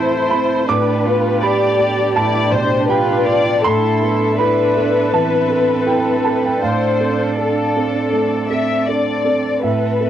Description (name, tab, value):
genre	neoclassical piano and strings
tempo	80 BPM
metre	4/4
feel	rubato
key	unclear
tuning	A4 = 440 Hz
part	muted symphonic violin section	melody	0.0-10.1 s	A4 to E5	-18 LUFS	left 5 dB	none
part	muted cello	second line	0.0-9.2 s	C4 to G4	-22 LUFS	right 5 dB	tape echo
part	dark concert grand piano	accompaniment	0.0-10.1 s	A2 to D6	-18 LUFS	right 4 dB	none
part	muted chamber string section	sustained chords	0.0-10.1 s	A3 to E5	-25 LUFS	left 2 dB	none
room	moderate studio reverb, RT60 0.5 s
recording	home recording on cassette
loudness	-14 LUFS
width	side -10 dB against mid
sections	0.0-10.1 A section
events	none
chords	0.0 Amadd9; 0.7 G/A; 3.6 Amadd9; 6.6 Dm7/A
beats	| 0.68 1.42 2.15 2.89 | 3.64 4.38 5.11 5.86 | 6.61 7.37 8.11 8.87 | 9.62